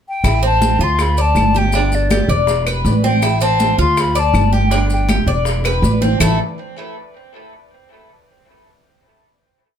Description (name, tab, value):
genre	latin, Cuban son and guajira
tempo	161 BPM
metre	4/4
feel	straight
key	A minor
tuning	A4 = 440 Hz
part	hollow concert flute	melody	0.1-6.4 s	D5 to C6	-18 LUFS	left 3 dB	plate reverb
part	Cuban tres	arpeggios	0.2-6.4 s	A3 to D5	-20 LUFS	equal	tape echo
part	upright bass	bass	0.2-6.4 s	E1 to D2	-17 LUFS	equal	none
part	bongos	percussion	0.2-6.3 s	none	-27 LUFS	left 2 dB	none
part	claves	percussion	0.2-6.3 s	none	-26 LUFS	left 4 dB	none
part	congas	percussion	0.2-6.3 s	none	-21 LUFS	right 1 dB	none
part	maracas	percussion	0.2-6.3 s	none	-30 LUFS	left 3 dB	none
room	light reverb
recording	close, detailed microphones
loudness	-13 LUFS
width	side -8 dB against mid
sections	0.0-0.2 pickup bar; 0.2-6.2 montuno (vamp); 6.2-7.7 final chord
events	drum fill 5.7-6.2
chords	0.2 Am; 1.0 Dm; 1.7 G5; 2.5 E5; 3.2 Am; 4.0 Dm; 4.7 G5; 5.5 E5; 6.2 A5